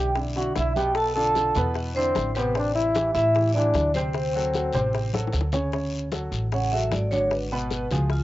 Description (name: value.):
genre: Afro-Cuban jazz.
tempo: 151 BPM.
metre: 4/4.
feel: straight.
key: unclear.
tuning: A4 = 440 Hz.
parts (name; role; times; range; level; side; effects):
vibraphone with medium mallets; melody; 0.0-8.2 s; E#4 to A5; -26 LUFS; right 2 dB; cassette tape, plate reverb.
warm trombone; second line; 0.0-5.3 s; B3 to A4; -27 LUFS; left 2 dB; plate reverb.
warm baby grand piano; accompaniment; 0.0-8.2 s; B2 to C#5; -30 LUFS; right 1 dB; plate reverb.
upright bass; bass; 0.0-8.2 s; G#1 to A2; -27 LUFS; equal; none.
bongos; percussion; 0.2-8.2 s; none; -33 LUFS; left 7 dB; none.
congas; percussion; 0.2-8.2 s; none; -34 LUFS; left 1 dB; none.
guiro; percussion; 0.2-8.2 s; none; -39 LUFS; left 5 dB; none.
room: wet booth ambience, RT60 0.2 s.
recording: home recording on cassette, nothing above 7.7 kHz.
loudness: -22 LUFS.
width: side -15 dB against mid.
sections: 0.0-5.7 A section; 5.7-8.2 B section.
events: drum fill 5.1-5.7; vibraphone solo 5.7-8.2.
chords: 0.0 Em7; 1.0 Bm7b5; 1.8 E5; 2.6 Am7; 4.1 D7; 5.7 Dmaj7; 7.3 G#m7b5.